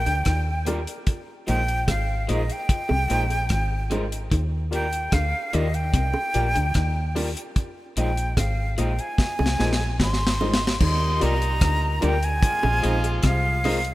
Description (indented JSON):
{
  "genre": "lovers rock reggae",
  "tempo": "74 BPM",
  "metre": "4/4",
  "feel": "straight",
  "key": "Eb major",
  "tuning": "A4 = 440 Hz",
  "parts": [
    { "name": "breathy jazz flute", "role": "melody", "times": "0.0-13.9 s", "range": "Eb5 to C6", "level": "-27 LUFS", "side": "equal", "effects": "tape echo" },
    { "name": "deep dub fingered electric bass", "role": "bass", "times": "0.0-13.9 s", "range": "Ab1 to Eb2", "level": "-24 LUFS", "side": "equal", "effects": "none" },
    { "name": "tine electric piano", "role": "accompaniment", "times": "0.1-13.8 s", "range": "F4 to Eb5", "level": "-33 LUFS", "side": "left 3 dB", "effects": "medium stereo tremolo, tape echo" },
    { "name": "electric guitar through a small old amp", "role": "riff", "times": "0.1-13.5 s", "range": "Ab2 to Eb3", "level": "-36 LUFS", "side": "left 4 dB", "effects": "none" },
    { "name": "deep reggae drum kit", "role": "drums", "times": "0.1-13.9 s", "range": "crash cymbal, hi-hat, kick drum, rim click, snare drum", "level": "-24 LUFS", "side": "equal", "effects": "tape echo" },
    { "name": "electric guitar through a small old amp", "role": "stabs", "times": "0.7-13.8 s", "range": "Ab3 to Bb4", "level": "-36 LUFS", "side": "right 2 dB", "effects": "lush chorus" },
    { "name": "bongos", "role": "percussion", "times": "0.7-13.8 s", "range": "none", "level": "-34 LUFS", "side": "right 3 dB", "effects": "tape echo" },
    { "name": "clear horn section", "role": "second line", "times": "10.8-13.6 s", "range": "Bb2 to F4", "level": "-31 LUFS", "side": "equal", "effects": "none" }
  ],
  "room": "light reverb, small room reverb",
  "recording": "rough home demo mix",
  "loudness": "-21 LUFS",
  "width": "side -17 dB against mid",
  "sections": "0.0-10.8 A section; 10.8-13.9 B section",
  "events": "drum fill 9.2-10.8",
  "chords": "0.0 Ebmaj7; 1.1 Bb7sus4; 4.3 Ebmaj7; 7.6 Bb7sus4; 10.8 Ebmaj7; 12.4 Bb9sus4",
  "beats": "0.26 | 1.07 1.88 2.69 3.50 | 4.32 5.13 5.94 6.75 | 7.56 8.37 9.18 9.99 | 10.80 11.62 12.43 13.24"
}